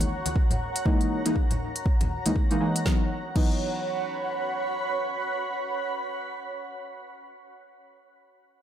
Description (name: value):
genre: deep house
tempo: 120 BPM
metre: 4/4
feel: swing 60% on 16ths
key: C# dorian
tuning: A4 = 440 Hz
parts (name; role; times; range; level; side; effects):
- deep house drum kit; drums; 0.0-3.5 s; crash cymbal, hi-hat, snare drum; -34 LUFS; left 1 dB; studio reverb
- congas; percussion; 0.0-2.3 s; none; -32 LUFS; left 1 dB; none
- granular cloud pad; texture; 0.0-7.0 s; C#5 to B5; -31 LUFS; right 2 dB; built-in reverb, sidechain pumping
- electronic kick drum; drums; 0.4-3.5 s; none; -24 LUFS; equal; studio reverb
- deep mellow chord stab; stabs; 0.9-7.3 s; E3 to D#4; -28 LUFS; equal; chorus, sidechain pumping, dub echo
room: light reverb, digital ambience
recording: none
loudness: -24 LUFS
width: side -10 dB against mid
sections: 0.0-2.9 A section; 2.9-6.9 B section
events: none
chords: 0.0 F#13; 2.9 C#m11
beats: 0.36 | 0.86 1.36 1.86 2.36 | 2.86 3.36 3.86 4.36 | 4.86 5.36 5.86 6.36